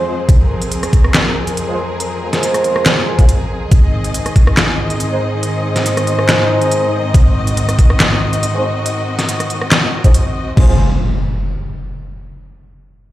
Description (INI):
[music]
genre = heavy wobble dubstep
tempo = 140 BPM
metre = 4/4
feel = swing 53% on 16ths, half-time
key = F phrygian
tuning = A4 = 442 Hz
[part]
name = rich symphonic string section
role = sustained chords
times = 0.0-10.8 s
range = F2 to Eb5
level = -18 LUFS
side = equal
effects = sidechain pumping
[part]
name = mellow brass ensemble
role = stabs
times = 0.0-10.7 s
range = Ab3 to C5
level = -19 LUFS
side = right 1 dB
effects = low-pass filter, digital delay
[part]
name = dubstep drum kit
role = drums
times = 0.3-10.7 s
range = crash cymbal, handclaps, hi-hat, rim click, snare drum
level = -16 LUFS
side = equal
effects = none
[part]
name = electronic kick drum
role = drums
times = 0.3-4.4, 7.1-10.7 s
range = none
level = -9 LUFS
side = equal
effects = none
[part]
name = impact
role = sound effects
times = 10.6-12.3 s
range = none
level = -16 LUFS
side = equal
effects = none
[sound]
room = light reverb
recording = played on a big sound system in a bare room, large studio reverb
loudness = -12 LUFS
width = side -15 dB against mid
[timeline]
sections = 0.0-10.6 A section; 10.6-12.3 B section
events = filter sweep on brass ensemble 0.0-10.6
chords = 0.0 Fm; 3.7 Ab; 10.6 Fm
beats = | 0.29 0.71 1.14 1.57 | 2.00 2.43 2.86 3.29 | 3.71 4.14 4.57 5.00 | 5.43 5.86 6.29 6.71 | 7.14 7.57 8.00 8.43 | 8.86 9.29 9.71 10.14 | 10.57 11.00 11.43 11.86